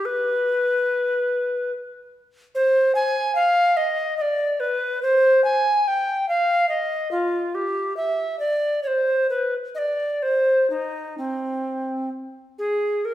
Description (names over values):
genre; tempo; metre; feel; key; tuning
classical, baroque-style fantasia for unaccompanied recorder; 62-74 BPM; 3/4; rubato; C minor; A4 = 439 Hz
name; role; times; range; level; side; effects
tenor recorder; solo; 0.0-13.1 s; C4 to Ab5; -20 LUFS; equal; none
room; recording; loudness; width
wet recital hall reverb, RT60 1.6 s; heard from further back in the room; -20 LUFS; side -13 dB against mid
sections
0.0-13.1 A section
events
none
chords
none